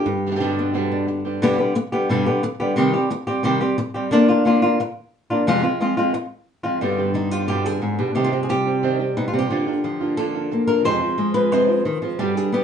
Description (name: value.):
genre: flamenco.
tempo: 178 BPM.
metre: 4/4.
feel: straight.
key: G phrygian dominant.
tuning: A4 = 442 Hz.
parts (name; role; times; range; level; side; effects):
flamenco guitar; melody; 0.0-12.6 s; F2 to C5; -19 LUFS; left 1 dB; slapback echo.
flamenco guitar; stabs; 0.0-1.4, 6.8-12.6 s; F2 to G4; -24 LUFS; right 4 dB; slapback echo.
room: wet studio ambience, RT60 0.5 s.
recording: heard from further back in the room, nothing above 10.4 kHz.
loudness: -18 LUFS.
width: side -7 dB against mid.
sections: 0.0-1.4 A section; 1.4-6.8 B section; 6.8-12.6 C section.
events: none.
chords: 0.1 G; 2.8 Cm; 4.1 Bb/D; 5.5 Fm; 6.8 G; 8.2 Cm; 9.5 Bb/D; 10.9 Fm.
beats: | 0.06 0.40 0.74 1.08 | 1.42 1.75 2.09 2.43 | 2.77 3.11 3.44 3.78 | 4.12 4.46 4.79 5.13 | 5.47 5.80 6.14 6.48 | 6.81 7.15 7.49 7.82 | 8.16 8.50 8.83 9.17 | 9.51 9.84 10.18 10.51 | 10.85 11.19 11.52 11.86 | 12.20 12.53.